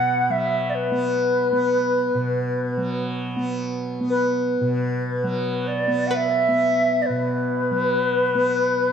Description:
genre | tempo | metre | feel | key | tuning
world meditative, free-time meditation music | free time | none | none | unclear | A4 = 441 Hz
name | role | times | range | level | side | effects
xiao | melody | 0.0-8.9 s | B4 to F#5 | -21 LUFS | left 1 dB | none
tanpura | drone | 0.0-8.9 s | B2 to B3 | -25 LUFS | right 1 dB | none
string-like resonator pluck | texture | 6.1-8.9 s | B4 | -30 LUFS | left 2 dB | chorus
room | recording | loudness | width
wet recital hall reverb, RT60 1.6 s | dark, warm production | -20 LUFS | side -7 dB against mid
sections
0.0-8.9 A section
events
none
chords
none

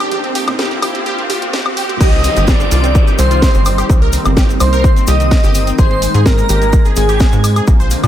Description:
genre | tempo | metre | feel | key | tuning
progressive house | 127 BPM | 4/4 | straight | C minor | A4 = 440 Hz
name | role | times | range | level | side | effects
lush unison pad | sustained chords | 0.0-8.1 s | D3 to F4 | -23 LUFS | left 1 dB | chorus, sidechain pumping
wide unison pluck | arpeggios | 0.0-8.1 s | Ab3 to C5 | -21 LUFS | right 2 dB | phaser, sidechain pumping, tape echo
tight sequencer bass | bass | 0.0-8.1 s | G1 to Bb2 | -15 LUFS | equal | sidechain pumping
house drum kit | drums | 0.0-8.1 s | crash cymbal, hi-hat, snare drum, woodblock | -20 LUFS | left 1 dB | overdrive
riser and downlifter | sound effects | 0.0-5.8 s | none | -23 LUFS | equal | none
wide unison lead | melody | 2.0-7.6 s | Ab4 to Eb5 | -19 LUFS | equal | tape echo
airy dreamy lead | second line | 2.0-7.6 s | Ab5 to Eb6 | -24 LUFS | equal | chorus, phaser, sidechain pumping, tape echo
electronic kick drum | drums | 2.0-7.8 s | none | -11 LUFS | equal | overdrive
cabasa | percussion | 2.0-8.1 s | none | -28 LUFS | left 4 dB | none
room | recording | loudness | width
little or no reverb | high-pass filter | -10 LUFS | side -11 dB against mid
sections
0.0-2.0 A section; 2.0-8.1 B section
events
build-up 0.0-2.0; riser 0.0-2.0; drop 2.0-8.1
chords
0.1 Bbadd9; 2.0 Cm; 5.8 Ab

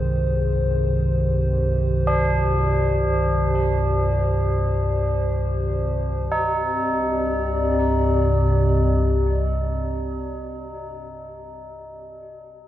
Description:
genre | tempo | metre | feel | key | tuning
dark ambient drone | free time | none | none | C minor | A4 = 440 Hz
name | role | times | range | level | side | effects
dark analog pad | sustained chords | 0.0-11.0 s | C3 to D5 | -24 LUFS | equal | chorus
deep rumbling drone | drone | 0.0-11.1 s | C2 to G2 | -22 LUFS | equal | built-in reverb, lush chorus
tubular bells | arpeggios | 2.1-12.7 s | D4 to Eb4 | -26 LUFS | equal | tape echo
room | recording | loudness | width
moderate huge ambient reverb, RT60 7.5 s | worn, warbling old tape, cassette tape, warbly pitch drift | -19 LUFS | side -13 dB against mid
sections
0.0-6.3 A section; 6.3-10.2 B section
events
none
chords
0.0 Ab/C; 6.3 Cm

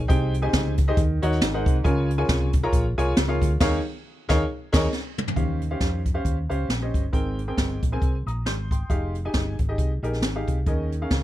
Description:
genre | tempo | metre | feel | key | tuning
uptempo gospel | 136 BPM | 4/4 | swing 57% on 8ths | unclear | A4 = 440 Hz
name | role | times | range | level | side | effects
hollow-body short-scale fingered electric bass | bass | 0.0-11.2 s | F1 to F2 | -26 LUFS | equal | none
clear upright piano | accompaniment | 0.1-11.2 s | Ab2 to G6 | -27 LUFS | equal | none
jazz brush drum kit | drums | 0.1-11.2 s | crash cymbal, hi-hat, kick drum, snare drum, toms | -24 LUFS | equal | none
room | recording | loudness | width
little or no reverb | none | -21 LUFS | side -14 dB against mid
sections
0.0-5.4 A section; 5.4-11.2 B section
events
band accent 3.6-5.4; upright piano fill 4.7-5.4; drum fill 4.9-5.4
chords
0.1 Abmaj7/C; 1.0 Ebm7; 1.4 Ab9; 1.9 Db6; 3.6 Eb9sus4; 5.4 Eb13; 7.1 Abmaj9; 8.9 Fm9; 10.7 Eb7sus4

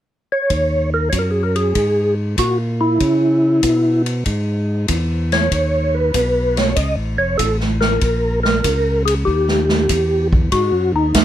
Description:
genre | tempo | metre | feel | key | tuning
soul jazz organ trio | 96 BPM | 4/4 | swing 69% on 8ths | unclear | A4 = 437 Hz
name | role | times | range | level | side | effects
percussive tonewheel organ | melody | 0.3-11.2 s | D#4 to D#5 | -17 LUFS | equal | slow rotary speaker, chorus vibrato
overdriven tonewheel organ | bass | 0.5-11.2 s | F1 to C#3 | -20 LUFS | equal | slow rotary speaker
swinging big-band drum kit | drums | 0.5-11.2 s | hi-hat, kick drum, ride cymbal, snare drum | -21 LUFS | right 1 dB | none
room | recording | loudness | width
light reverb | none | -15 LUFS | side -11 dB against mid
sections
0.5-10.5 A section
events
none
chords
0.0 N.C.; 0.5 D#sus4; 3.0 C#m7; 5.5 Badd9; 6.8 Faug; 8.0 A#m; 9.3 D#; 10.5 G#7(no3)

